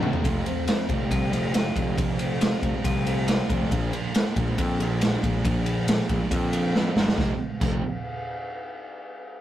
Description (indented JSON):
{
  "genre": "quiet-loud alternative rock",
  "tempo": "138 BPM",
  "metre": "4/4",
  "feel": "straight",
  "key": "F major",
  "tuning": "A4 = 440 Hz",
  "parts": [
    { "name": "thick fuzz guitar", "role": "riff", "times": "0.0-7.8 s", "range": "F2 to F4", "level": "-31 LUFS", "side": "right 4 dB", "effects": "distortion" },
    { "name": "fuzz picked electric bass", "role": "bass", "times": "0.0-7.8 s", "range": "F1 to F2", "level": "-26 LUFS", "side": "equal", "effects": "overdrive" },
    { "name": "raw garage drum kit", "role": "drums", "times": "0.0-7.7 s", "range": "crash cymbal, kick drum, ride cymbal, snare drum, toms", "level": "-25 LUFS", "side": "equal", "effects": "none" },
    { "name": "electric guitar through a small old amp", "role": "arpeggios", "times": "0.2-3.7 s", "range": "F3 to F4", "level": "-32 LUFS", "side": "left 4 dB", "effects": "none" }
  ],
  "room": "light reverb",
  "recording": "rough rehearsal-room recording",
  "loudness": "-22 LUFS",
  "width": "side -12 dB against mid",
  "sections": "0.2-7.2 A section; 7.2-8.9 B section",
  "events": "drum fill 0.0, 6.7-7.2",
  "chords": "0.2 Fadd9; 3.7 Bb; 7.2 F"
}